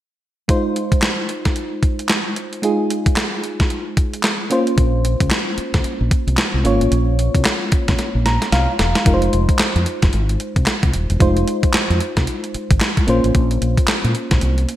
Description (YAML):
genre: R&B, new jack swing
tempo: 112 BPM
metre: 4/4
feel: swing 60% on 16ths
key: unclear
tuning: A4 = 439 Hz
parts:
  - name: FM electric piano with auto-pan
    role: accompaniment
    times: 0.5-14.8 s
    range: Ab3 to Bb5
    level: -21 LUFS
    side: equal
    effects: none
  - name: crisp 8-bit digital drum machine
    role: drums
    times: 0.5-14.8 s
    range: handclaps, hi-hat, kick drum, snare drum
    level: -18 LUFS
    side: equal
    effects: overdrive, gated reverb
  - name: fingered electric bass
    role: bass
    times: 4.8-14.6 s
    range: Eb1 to Bb2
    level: -18 LUFS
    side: equal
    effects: none
room: moderate lush hall reverb, RT60 1.6 s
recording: bright 1980s-style digital production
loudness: -15 LUFS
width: side -13 dB against mid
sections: 0.5-9.1 A section; 9.1-14.8 B section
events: drum fill 8.0-9.1; FM electric piano fill 8.0-9.1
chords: 0.5 Fm7; 4.5 Bbmadd9; 9.1 Fm7; 13.1 Bbmadd9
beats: | 0.49 1.02 1.56 2.10 | 2.63 3.17 3.70 4.24 | 4.78 5.31 5.85 6.38 | 6.92 7.45 7.99 8.53 | 9.06 9.60 10.13 10.67 | 11.20 11.74 12.28 12.81 | 13.35 13.88 14.42